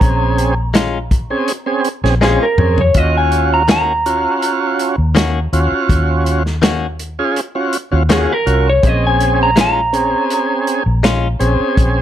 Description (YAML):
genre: straight-eighth soul blues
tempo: 82 BPM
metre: 4/4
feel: straight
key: Bb minor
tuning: A4 = 438 Hz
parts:
  - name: electric guitar through a small old amp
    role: melody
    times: 0.0-11.8 s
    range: Ab4 to Bb5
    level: -17 LUFS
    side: equal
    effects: none
  - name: tonewheel organ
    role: accompaniment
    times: 0.0-12.0 s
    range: C4 to Ab4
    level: -17 LUFS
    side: right 2 dB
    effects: overdrive, slow rotary speaker
  - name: vintage muted fingered electric bass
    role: bass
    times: 0.0-12.0 s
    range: Bb1 to F2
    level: -16 LUFS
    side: equal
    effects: none
  - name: warm soul drum kit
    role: drums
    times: 0.0-12.0 s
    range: hi-hat, kick drum, snare drum, toms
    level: -16 LUFS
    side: equal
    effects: none
  - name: direct-recorded clean electric guitar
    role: stabs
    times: 0.7-11.3 s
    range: Eb3 to Gb4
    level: -18 LUFS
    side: left 6 dB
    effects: none
room: light reverb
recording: none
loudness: -12 LUFS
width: side -11 dB against mid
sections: 0.0-12.0 A section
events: drum fill 2.2-3.0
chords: 0.0 Bbm7; 3.0 Ebm7; 8.8 Bbm7